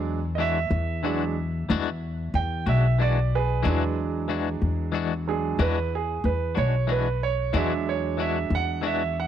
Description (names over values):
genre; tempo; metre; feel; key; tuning
slow blues; 62 BPM (dotted quarters); 12/8; straight; E mixolydian; A4 = 441 Hz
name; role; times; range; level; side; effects
bright concert grand piano; accompaniment; 0.0-9.3 s; F#3 to G5; -27 LUFS; right 9 dB; none
upright bass; bass; 0.0-9.3 s; B1 to E2; -26 LUFS; left 2 dB; none
clean electric guitar; accompaniment; 0.4-9.0 s; E3 to F#4; -30 LUFS; left 11 dB; tremolo
room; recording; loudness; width
small room ambience; home recording on cassette; -23 LUFS; side -10 dB against mid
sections
0.0-9.3 A section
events
grand piano solo 0.0-9.3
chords
0.0 E9